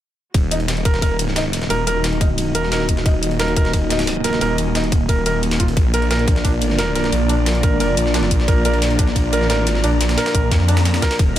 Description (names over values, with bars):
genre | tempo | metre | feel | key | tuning
dark technical drum and bass | 177 BPM | 4/4 | straight | Eb harmonic minor | A4 = 441 Hz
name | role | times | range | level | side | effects
dark analog pad | sustained chords | 1.0-11.4 s | Bb3 to Eb5 | -23 LUFS | equal | chorus, sidechain pumping
snarling distorted saw bass | bass | 0.3-11.4 s | Eb1 to F2 | -20 LUFS | equal | overdrive, sidechain pumping
breakbeat sampler-style drum kit | drums | 0.3-11.4 s | ride cymbal, snare drum | -27 LUFS | equal | overdrive, high-pass filter on cymbals, high-pass filter on snare, high-pass filter on room
electronic hi-hat and cabasa | drums | 0.3-11.4 s | none | -25 LUFS | left 2 dB | none
electronic kick drum | drums | 0.3-11.3 s | none | -17 LUFS | equal | none
muted studio string section | texture | 0.3-11.4 s | F4 to Bb5 | -32 LUFS | left 3 dB | none
felt-muted upright piano | arpeggios | 0.5-11.4 s | D4 to Bb4 | -23 LUFS | right 1 dB | sidechain pumping, tape echo
room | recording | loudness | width
light reverb | none | -15 LUFS | side -12 dB against mid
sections
0.3-11.4 A section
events
none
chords
0.3 Ebm; 5.8 Bb